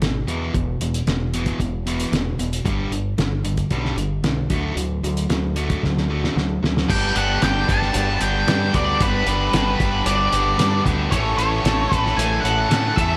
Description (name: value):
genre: classic rock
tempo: 113 BPM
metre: 4/4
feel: straight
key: unclear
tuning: A4 = 440 Hz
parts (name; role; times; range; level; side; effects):
- biting overdriven guitar; riff; 0.0-13.2 s; E2 to A4; -27 LUFS; equal; none
- growling fingered electric bass; bass; 0.0-13.2 s; E1 to A2; -27 LUFS; equal; overdrive
- cloth-damped thuddy drum kit; drums; 0.0-13.1 s; crash cymbal, hi-hat, kick drum, snare drum; -26 LUFS; equal; none
- octave-fuzz lead guitar; melody; 6.9-13.2 s; B4 to A5; -25 LUFS; equal; distortion
- overdriven electric guitar; riff; 6.9-13.2 s; G2 to A4; -28 LUFS; equal; none
room: studio ambience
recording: none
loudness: -21 LUFS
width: mono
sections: 0.0-6.9 A section; 6.9-13.2 B section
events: drum fill 5.8-6.9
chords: 0.0 E5; 2.7 G; 4.5 D; 6.9 G; 11.1 A